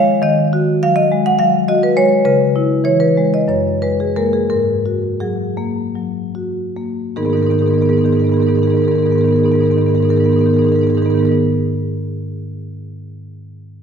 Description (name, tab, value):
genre	classical, contemporary piece for solo marimba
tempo	144-208 BPM (eighths)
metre	7/8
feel	straight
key	G# minor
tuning	A4 = 437 Hz
part	marimba with medium hard mallets	solo	0.0-11.4 s	F#2 to F#5	-13 LUFS	equal	none
room	wet scoring stage reverb, RT60 1.5 s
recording	recorded in a church or concert hall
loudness	-13 LUFS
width	side -7 dB against mid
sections	0.0-7.2 A section; 7.2-13.0 B section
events	slowing down 1.3-7.2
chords	0.2 G#5/D#; 2.3 C#m7; 3.5 F#add9; 4.5 G#sus2; 7.2 G#madd9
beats	| 0.24 0.53 0.82 1.11 1.40 1.69 1.98 | 2.27 2.57 2.87 3.18 3.49 3.82 4.16 | 4.50 4.86 5.22 5.59 5.97 6.37 6.78 | 7.19 7.60 8.02 8.43 8.84 9.25 9.66 | 10.07 10.48 10.89 11.30